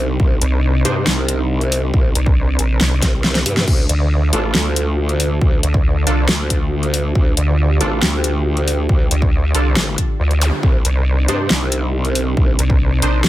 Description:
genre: heavy wobble dubstep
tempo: 138 BPM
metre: 4/4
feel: half-time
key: D phrygian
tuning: A4 = 439 Hz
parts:
  - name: lush unison pad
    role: sustained chords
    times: 0.0-13.3 s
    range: C3 to A4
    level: -24 LUFS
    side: equal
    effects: chorus, phaser, sidechain pumping
  - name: growl bass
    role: bass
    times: 0.0-13.3 s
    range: A1 to G2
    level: -19 LUFS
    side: equal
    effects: chorus, overdrive
  - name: electronic kick drum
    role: drums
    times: 0.2-12.8 s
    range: none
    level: -15 LUFS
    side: equal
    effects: none
  - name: vowel-sweep wobble bass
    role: bass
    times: 0.4-13.2 s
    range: Bb1 to D2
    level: -15 LUFS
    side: equal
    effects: chorus, overdrive
  - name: dubstep drum kit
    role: drums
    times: 0.4-13.3 s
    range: crash cymbal, hi-hat, snare drum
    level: -18 LUFS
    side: left 1 dB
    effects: overdrive
  - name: orchestra-hit-like synth stab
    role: stabs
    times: 0.8-1.0, 4.3-13.1 s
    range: D4 to C5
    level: -24 LUFS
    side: right 2 dB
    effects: built-in reverb, digital delay
  - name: zap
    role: sound effects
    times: 10.4-10.5 s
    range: none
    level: -25 LUFS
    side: equal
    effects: none
room: little or no reverb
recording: none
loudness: -14 LUFS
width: side -15 dB against mid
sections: 0.0-13.3 A section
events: drum fill 3.0-3.7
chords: 0.0 Cmadd9; 3.7 Dm; 10.6 Cmadd9

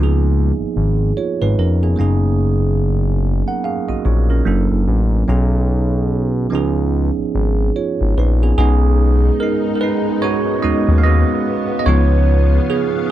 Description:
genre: R&B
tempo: 73 BPM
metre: 4/4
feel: swing 60% on 16ths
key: unclear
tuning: A4 = 440 Hz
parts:
  - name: bell-like tine electric piano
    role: accompaniment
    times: 0.0-13.1 s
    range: E#3 to F#5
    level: -19 LUFS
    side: right 6 dB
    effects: phaser
  - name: smooth synth bass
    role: bass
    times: 0.0-12.6 s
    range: E#1 to D#2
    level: -15 LUFS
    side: left 1 dB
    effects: none
  - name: soft string machine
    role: sustained chords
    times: 8.9-13.1 s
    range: C#3 to E#5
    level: -22 LUFS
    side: left 5 dB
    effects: ensemble chorus
room: little or no reverb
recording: dry, close 1970s-style studio recording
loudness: -14 LUFS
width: side -12 dB against mid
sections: 0.0-8.6 A section; 8.6-13.1 B section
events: tine electric piano solo 8.6-13.1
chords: 0.0 C#13; 2.0 F#69; 4.5 F#7alt; 5.3 B69; 6.5 C#9; 8.6 B6; 11.8 C#7

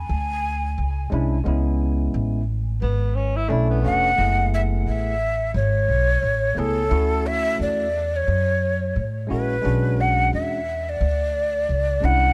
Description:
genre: hip hop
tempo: 88 BPM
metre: 4/4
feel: swing 61% on 16ths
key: B dorian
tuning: A4 = 437 Hz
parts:
  - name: breathy mellow jazz flute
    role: melody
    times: 0.0-12.3 s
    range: A4 to G#5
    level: -25 LUFS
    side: equal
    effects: tape echo
  - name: upright bass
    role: bass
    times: 0.0-12.3 s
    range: E#1 to A2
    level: -25 LUFS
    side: equal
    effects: none
  - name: bright tine electric piano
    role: accompaniment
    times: 1.1-12.3 s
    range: G#3 to G#4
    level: -29 LUFS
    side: equal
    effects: lush chorus
  - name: breathy tenor saxophone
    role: second line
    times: 2.8-4.2 s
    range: B3 to E4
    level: -31 LUFS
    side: equal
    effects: none
room: small room ambience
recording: none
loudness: -22 LUFS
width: mono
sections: 0.0-4.2 A section; 4.2-12.3 A section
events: none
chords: 0.0 Bm69 (rootless); 1.5 C#m7; 3.5 Bm11; 4.2 F#m11; 6.9 Dmaj9; 9.6 Bm69

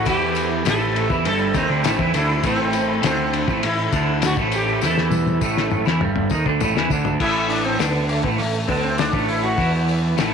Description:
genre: psychedelic rock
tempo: 101 BPM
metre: 4/4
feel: straight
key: A minor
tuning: A4 = 440 Hz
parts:
  - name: sitar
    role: melody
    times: 0.0-9.7 s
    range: A3 to A4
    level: -25 LUFS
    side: right 1 dB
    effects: slapback echo
  - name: muted chamber string section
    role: sustained chords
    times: 0.0-10.3 s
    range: A4 to B5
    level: -32 LUFS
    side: right 14 dB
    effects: none
  - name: twelve-string electric guitar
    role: riff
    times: 0.0-10.3 s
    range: G2 to E3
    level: -21 LUFS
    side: right 1 dB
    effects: tremolo, double-tracked left and right
  - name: fuzz picked electric bass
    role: bass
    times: 0.0-10.3 s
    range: G1 to E2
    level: -27 LUFS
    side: right 1 dB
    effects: overdrive
  - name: cloth-damped thuddy drum kit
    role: drums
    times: 0.1-10.3 s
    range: crash cymbal, hi-hat, kick drum, ride cymbal, snare drum, toms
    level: -24 LUFS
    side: left 6 dB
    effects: none
  - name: tambourine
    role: percussion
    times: 0.1-10.3 s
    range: none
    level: -38 LUFS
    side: left 13 dB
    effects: none
room: little or no reverb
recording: 1960s-style stereo with parts hard left and right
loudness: -17 LUFS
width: side -6 dB against mid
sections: 0.0-7.2 A section; 7.2-10.3 B section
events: drum fill 4.8-7.2; sitar solo 7.2-10.3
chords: 0.0 Am; 7.2 A5

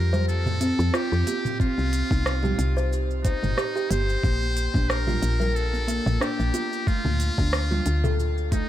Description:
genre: organic downtempo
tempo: 91 BPM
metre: 4/4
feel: swing 55% on 16ths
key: C dorian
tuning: A4 = 439 Hz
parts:
  - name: trumpet with metal mute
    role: melody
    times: 0.0-8.7 s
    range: Eb4 to C5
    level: -30 LUFS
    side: equal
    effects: tape echo, shimmer reverb
  - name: kalimba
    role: arpeggios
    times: 0.0-8.7 s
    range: A3 to C5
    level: -28 LUFS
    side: equal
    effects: tape echo, shimmer reverb
  - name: woody FM bass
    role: bass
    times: 0.0-8.6 s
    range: G1 to F2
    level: -24 LUFS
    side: equal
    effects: sidechain pumping
  - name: organic electronic drum kit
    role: drums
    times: 0.1-8.7 s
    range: hi-hat, rim click, shaker, toms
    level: -30 LUFS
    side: right 1 dB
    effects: none
  - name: congas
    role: percussion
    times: 0.1-7.8 s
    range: none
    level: -34 LUFS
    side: right 3 dB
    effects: none
  - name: electronic kick drum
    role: drums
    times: 1.6-8.7 s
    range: none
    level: -24 LUFS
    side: equal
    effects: overdrive
room: light reverb, digital ambience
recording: dark, warm production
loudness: -22 LUFS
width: side -12 dB against mid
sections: 0.0-8.7 A section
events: none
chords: 0.0 Fsus2; 1.6 Cm; 4.2 Bb5; 6.9 Dm

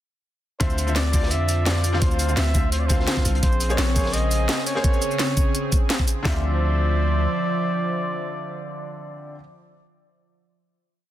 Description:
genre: liquid drum and bass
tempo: 170 BPM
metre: 4/4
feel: straight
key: D minor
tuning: A4 = 440 Hz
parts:
  - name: clear flugelhorn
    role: melody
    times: 0.6-9.4 s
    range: C5 to E5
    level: -29 LUFS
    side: equal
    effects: tape echo
  - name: bright concert grand piano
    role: accompaniment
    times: 0.6-9.4 s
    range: D3 to F5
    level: -30 LUFS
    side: left 1 dB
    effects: vintage 12-bit sampler grit, tape echo
  - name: lush unison pad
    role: sustained chords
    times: 0.6-9.4 s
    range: Db3 to E5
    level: -29 LUFS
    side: right 1 dB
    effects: chorus, sidechain pumping
  - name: long sustained 808-style bass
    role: bass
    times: 0.6-7.3 s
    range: Bb1 to F2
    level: -22 LUFS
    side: equal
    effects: none
  - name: crunchy breakbeat drum kit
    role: drums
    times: 0.6-4.8 s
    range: hi-hat, snare drum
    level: -34 LUFS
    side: equal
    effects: high-pass filter on hats, high-pass filter on snare, high-pass filter on room
  - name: drum and bass drum kit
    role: drums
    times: 0.6-6.3 s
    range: handclaps, kick drum, snare drum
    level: -22 LUFS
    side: equal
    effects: none
  - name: drum and bass drum kit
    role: drums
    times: 0.6-6.2 s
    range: hi-hat, shaker, snare drum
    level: -26 LUFS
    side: equal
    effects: none
room: light reverb, small room ambience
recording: dense, heavily limited modern master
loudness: -19 LUFS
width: side -12 dB against mid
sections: 0.6-6.3 drop; 6.3-9.1 final chord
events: drop 0.6-6.3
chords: 0.6 Dm9; 3.4 Bbm9; 6.3 Dm9

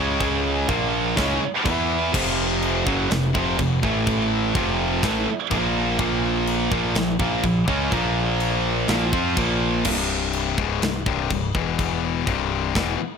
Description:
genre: heavy metal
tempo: 124 BPM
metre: 4/4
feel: straight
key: unclear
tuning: A4 = 440 Hz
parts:
  - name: heavy high-gain guitar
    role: riff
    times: 0.0-9.8 s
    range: F2 to F4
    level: -23 LUFS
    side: right 12 dB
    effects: distortion
  - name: high-gain distorted guitar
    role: riff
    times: 0.0-13.0 s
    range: C2 to F4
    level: -24 LUFS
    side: left 11 dB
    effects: distortion
  - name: modern bright picked electric bass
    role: bass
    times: 0.0-13.0 s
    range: C1 to F2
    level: -28 LUFS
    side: equal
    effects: none
  - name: tight metal drum kit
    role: drums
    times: 0.2-12.9 s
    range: china cymbal, crash cymbal, kick drum, snare drum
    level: -27 LUFS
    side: equal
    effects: none
room: small room ambience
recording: none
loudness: -20 LUFS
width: side -6 dB against mid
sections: 0.0-9.9 A section; 9.9-13.2 A section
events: none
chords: 0.0 Db5; 0.7 Bb5; 1.7 E5; 2.1 F5; 3.8 A5; 4.5 F5; 5.5 Bb5; 9.9 C5; 11.5 E5; 12.3 C

